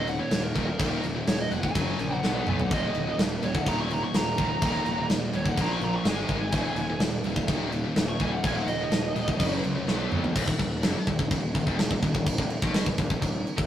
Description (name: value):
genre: heavy metal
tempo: 125 BPM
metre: 4/4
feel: straight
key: Eb minor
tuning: A4 = 439 Hz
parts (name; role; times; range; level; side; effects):
- high-gain lead guitar; melody; 0.0-9.6 s; Bb4 to Db6; -32 LUFS; right 1 dB; distortion
- heavy high-gain guitar; riff; 0.0-13.7 s; Eb2 to B3; -35 LUFS; left 5 dB; distortion
- heavy high-gain guitar; riff; 0.0-13.7 s; Eb2 to B3; -35 LUFS; right 2 dB; distortion
- thick fuzz guitar; riff; 0.0-13.7 s; Eb2 to B3; -34 LUFS; equal; distortion
- fuzz picked electric bass; bass; 0.0-13.7 s; Eb1 to F2; -32 LUFS; equal; overdrive
- tight metal drum kit; drums; 0.1-13.7 s; crash cymbal, kick drum, snare drum, toms; -27 LUFS; equal; none
room: light reverb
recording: rough rehearsal-room recording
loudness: -24 LUFS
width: side -11 dB against mid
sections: 0.0-10.4 A section; 10.4-13.7 B section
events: lead electric guitar solo 0.0-10.4; drum fill 2.2-2.7, 9.9-10.4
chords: 0.0 Eb5; 1.7 Gb5; 2.2 B5; 2.7 Eb5; 5.6 Bb5; 6.1 Ab5; 6.5 Eb5; 9.4 Gb5; 9.9 B5; 10.4 Ebm